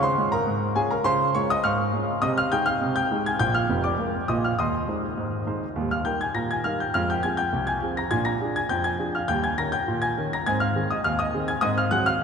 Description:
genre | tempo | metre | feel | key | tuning
ragtime piano | 102 BPM | 2/4 | straight | Ab major | A4 = 440 Hz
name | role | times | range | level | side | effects
clear concert grand piano | solo | 0.0-12.2 s | F1 to Bb6 | -22 LUFS | equal | none
room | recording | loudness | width
wet cathedral reverb, RT60 7.0 s | recorded in a church or concert hall | -22 LUFS | side -6 dB against mid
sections
0.0-12.2 A section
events
none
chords
0.0 Db; 2.2 Ab/C; 3.4 Bb7; 4.6 Ab/Eb; 5.8 Eb; 6.9 Fm; 8.1 Bb7; 9.3 Eb7; 10.5 Ab; 11.6 Ab7

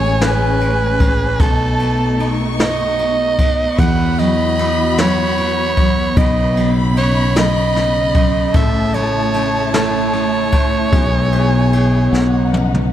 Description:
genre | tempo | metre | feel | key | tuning
six-eight pop ballad | 50 BPM (dotted quarters) | 6/8 | straight | E major | A4 = 440 Hz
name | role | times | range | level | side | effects
raspy soprano saxophone | melody | 0.0-12.5 s | A4 to F#5 | -19 LUFS | right 3 dB | none
dark studio violin section | second line | 0.0-12.9 s | F#5 to C#6 | -24 LUFS | left 1 dB | none
picked steel-string acoustic guitar | accompaniment | 0.0-12.9 s | A2 to E4 | -20 LUFS | equal | double-tracked left and right
dark studio string section | sustained chords | 0.0-12.9 s | A2 to F#4 | -24 LUFS | left 2 dB | none
sustaining fretless electric bass | bass | 0.0-12.9 s | A1 to E2 | -19 LUFS | left 1 dB | none
jazz brush drum kit | drums | 0.2-12.9 s | kick drum, ride cymbal, snare drum, toms | -20 LUFS | equal | none
room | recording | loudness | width
light reverb, studio reverb | dark, warm production | -13 LUFS | side -11 dB against mid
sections
0.0-12.9 A section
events
drum fill 12.1-12.9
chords
0.0 Amaj7; 1.4 B7; 3.8 Esus2; 6.2 Badd9; 8.5 A; 10.9 E/B; 12.1 Badd9

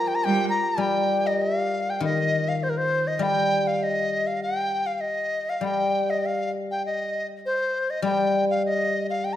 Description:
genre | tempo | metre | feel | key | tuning
chinese traditional, Chinese chamber ensemble | 100 BPM | 2/4 | rubato | G jue mode | A4 = 442 Hz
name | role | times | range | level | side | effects
large dizi | melody | 0.0-9.4 s | Bb4 to Bb5 | -25 LUFS | equal | none
hammered dulcimer | second line | 0.0-3.4 s | F4 to C5 | -34 LUFS | right 2 dB | none
guzheng | accompaniment | 0.0-9.4 s | Eb3 to G3 | -26 LUFS | left 2 dB | none
clear erhu | second line | 0.3-0.5 s | G5 | -34 LUFS | left 4 dB | none
rich cello | second line | 0.3-0.5 s | G3 | -28 LUFS | right 3 dB | none
room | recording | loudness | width
wet recital hall reverb, RT60 1.4 s | none | -22 LUFS | side -12 dB against mid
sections
0.8-9.4 A section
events
none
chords
none

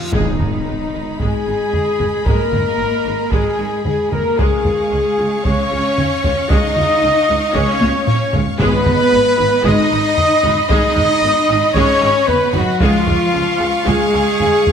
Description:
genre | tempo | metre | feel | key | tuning
cinematic, epic orchestral film score | 113 BPM | 4/4 | straight | G# dorian | A4 = 440 Hz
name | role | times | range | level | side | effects
clear symphonic violin section | melody | 0.0-14.7 s | D#4 to D#5 | -26 LUFS | left 3 dB | none
mellow hollow concert flute | second line | 0.0-14.7 s | D#5 to D#6 | -26 LUFS | left 2 dB | none
clear French horn section | sustained chords | 0.0-14.7 s | D#4 to D#5 | -19 LUFS | left 2 dB | none
mellow trumpet | stabs | 0.0-14.7 s | D#4 to D#5 | -22 LUFS | right 2 dB | none
rich symphonic cello section | bass | 0.0-14.7 s | D#3 to D#4 | -22 LUFS | right 3 dB | none
reverse cymbal and impact | sound effects | 0.0-2.3 s | none | -26 LUFS | equal | none
warm symphonic viola section | accompaniment | 0.1-14.7 s | G#3 to G#4 | -24 LUFS | equal | none
rich symphonic double bass section | bass | 0.1-14.7 s | G#1 to C#2 | -22 LUFS | right 2 dB | none
taiko ensemble | drums | 0.1-14.7 s | none | -20 LUFS | equal | none
timpani | percussion | 0.1-0.9, 8.6-9.3 s | G#2 | -25 LUFS | equal | none
rich symphonic violin section | second line | 0.2-14.7 s | D#5 to C#6 | -26 LUFS | left 2 dB | none
room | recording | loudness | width
moderate scoring stage reverb, RT60 1.5 s | none | -13 LUFS | side -7 dB against mid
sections
0.1-14.7 A section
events
impact 0.1-2.3; drum fill 7.8-8.6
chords
0.1 G#m; 4.4 C#; 8.6 G#m; 12.8 C#

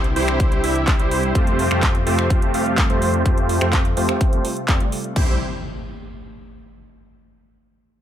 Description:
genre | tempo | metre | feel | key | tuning
EDM, festival progressive house | 126 BPM | 4/4 | straight | C major | A4 = 439 Hz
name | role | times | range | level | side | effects
lush unison pad | sustained chords | 0.0-5.4 s | C3 to F4 | -29 LUFS | equal | chorus, phaser, sidechain pumping
wide detuned saw bass | bass | 0.0-5.4 s | C2 to F2 | -24 LUFS | equal | chorus, sidechain pumping
big-room dance drum kit | drums | 0.0-5.1 s | finger snaps, handclaps, hi-hat | -25 LUFS | equal | none
downlifter and impact | sound effects | 0.1-1.4, 5.2-7.1 s | none | -35 LUFS | equal | none
supersaw chords | riff | 0.2-5.3 s | A3 to F5 | -22 LUFS | right 1 dB | sidechain pumping, low-pass filter, ping-pong delay
big-room dance drum kit | drums | 0.4-5.3 s | crash cymbal, kick drum | -19 LUFS | equal | none
room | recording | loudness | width
little or no reverb | none | -16 LUFS | side -10 dB against mid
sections
0.0-5.2 A section; 5.2-7.1 B section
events
filter sweep on supersaw synth 0.0-5.2; filter sweep on detuned saw bass 0.0-5.2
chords
0.0 C; 1.4 Fadd9; 5.2 C

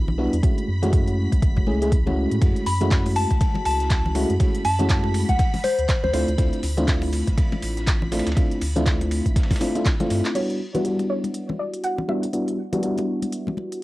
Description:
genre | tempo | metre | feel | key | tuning
deep house | 121 BPM | 4/4 | swing 59% on 16ths | E dorian | A4 = 439 Hz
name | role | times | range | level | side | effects
mellow FM electric piano | stabs | 0.0-13.8 s | G3 to G#4 | -25 LUFS | equal | chorus, sidechain pumping, low-pass filter, cassette tape, analog delay
warm sub bass | bass | 0.0-10.2 s | F#1 to A2 | -25 LUFS | equal | sidechain pumping
string machine, violins | texture | 0.0-10.4 s | B5 | -40 LUFS | right 1 dB | ensemble chorus, cassette tape
congas | percussion | 0.1-13.7 s | none | -30 LUFS | left 2 dB | none
deep house drum kit | drums | 0.3-13.8 s | crash cymbal, handclaps, hi-hat | -32 LUFS | equal | studio reverb, cassette tape
electronic kick drum | drums | 0.4-10.0 s | none | -20 LUFS | equal | studio reverb, cassette tape
dusty soul sampler-style drum kit | drums | 2.4-10.2 s | hi-hat, ride cymbal, snare drum | -39 LUFS | right 1 dB | overdrive, high-pass filter on cymbals, studio reverb, cassette tape, high-pass filter on hats, high-pass filter on snare, high-pass filter on room
soft synth bell | melody | 2.7-6.2 s | C5 to B5 | -25 LUFS | left 1 dB | chorus, phaser, cassette tape, analog delay
soft round pluck | melody | 10.4-13.5 s | B4 to F#5 | -30 LUFS | equal | lush chorus, cassette tape, analog delay
room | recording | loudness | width
light reverb | home recording on cassette | -19 LUFS | side -18 dB against mid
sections
0.0-10.4 A section; 10.4-13.8 B section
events
drum fill 9.9-10.4; filter sweep on FM electric piano 10.4-13.8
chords
0.4 F#m9; 5.4 Dm9; 10.4 Em9

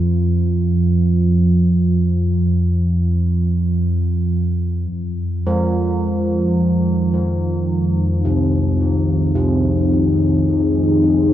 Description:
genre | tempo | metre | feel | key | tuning
dark ambient drone | free time | none | none | F minor | A4 = 439 Hz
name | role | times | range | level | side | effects
deep rumbling drone | drone | 0.0-11.3 s | F2 to F3 | -17 LUFS | equal | built-in reverb
deep dark ambient pad | sustained chords | 5.9-11.3 s | F3 to C5 | -19 LUFS | left 1 dB | chorus, built-in reverb
carillon bells | arpeggios | 5.5-11.3 s | C3 to F3 | -20 LUFS | right 1 dB | ping-pong delay
room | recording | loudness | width
wet huge ambient reverb, RT60 8.7 s | worn, warbling old tape, cassette tape, warbly pitch drift | -15 LUFS | side -12 dB against mid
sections
0.0-4.9 A section; 4.9-11.3 B section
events
none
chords
0.0 N.C.; 4.9 Fm

